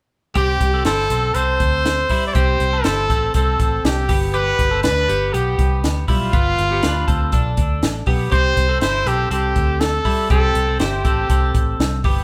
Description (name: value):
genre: jangly indie pop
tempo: 121 BPM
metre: 4/4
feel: straight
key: C major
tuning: A4 = 439 Hz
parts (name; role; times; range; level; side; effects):
- brilliant trumpet; melody; 0.4-11.8 s; F4 to D5; -22 LUFS; equal; none
- twelve-string electric guitar; arpeggios; 0.4-12.2 s; G3 to C5; -26 LUFS; equal; spring reverb
- vintage muted fingered electric bass; bass; 0.4-12.2 s; G1 to D2; -24 LUFS; equal; none
- compact cocktail drum kit; drums; 0.4-12.2 s; hi-hat, kick drum, snare drum; -22 LUFS; equal; none
room: wet studio reverb, RT60 0.9 s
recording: band playing live in one room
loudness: -18 LUFS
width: mono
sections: 0.4-12.2 A section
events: none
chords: 0.4 C6; 4.1 G7; 8.3 C6